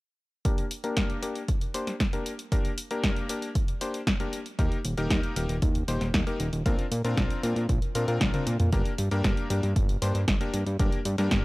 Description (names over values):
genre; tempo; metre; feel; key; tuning
italo disco; 116 BPM; 4/4; straight; G minor; A4 = 440 Hz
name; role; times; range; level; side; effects
bright electric grand piano; stabs; 0.5-11.4 s; Bb3 to C5; -32 LUFS; left 2 dB; low-pass filter, tape echo
electronic kick drum; drums; 0.5-11.4 s; none; -27 LUFS; equal; small room ambience
house drum kit; drums; 0.5-11.4 s; hi-hat, snare drum, toms; -30 LUFS; equal; small room ambience
fat analog bass; bass; 4.6-11.4 s; Eb1 to Bb2; -28 LUFS; equal; none
room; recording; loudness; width
little or no reverb; dry, gritty hardware recording, transformer saturation; -25 LUFS; side -21 dB against mid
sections
0.5-8.7 A section; 8.7-11.4 B section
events
filter sweep on electric grand piano 0.5-8.7; drum fill 8.2-8.7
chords
0.5 Gm; 4.6 Eb; 6.7 Bbadd9; 8.7 Gm